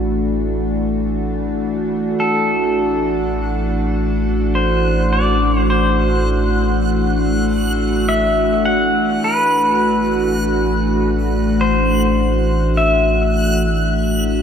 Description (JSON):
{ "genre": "ambient", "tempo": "51 BPM", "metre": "3/4", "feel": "straight", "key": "unclear", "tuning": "A4 = 437 Hz", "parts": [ { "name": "evolving wavetable pad", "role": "sustained chords", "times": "0.0-14.4 s", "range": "E3 to F#4", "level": "-18 LUFS", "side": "equal", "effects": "chorus, built-in reverb" }, { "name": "round analog bass", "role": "bass", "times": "0.0-14.4 s", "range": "A1", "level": "-20 LUFS", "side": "right 1 dB", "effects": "none" }, { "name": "pedal steel guitar", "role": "melody", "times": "2.2-14.4 s", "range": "A4 to F#5", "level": "-19 LUFS", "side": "left 1 dB", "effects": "analog delay" }, { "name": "backwards swelling texture", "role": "texture", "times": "3.2-14.4 s", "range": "F#6", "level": "-29 LUFS", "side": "equal", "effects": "built-in reverb" } ], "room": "wet plate reverb, RT60 2.4 s", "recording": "echo-heavy mix", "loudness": "-14 LUFS", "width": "side -8 dB against mid", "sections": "0.0-14.4 A section", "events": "none", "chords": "0.0 Dadd9/A" }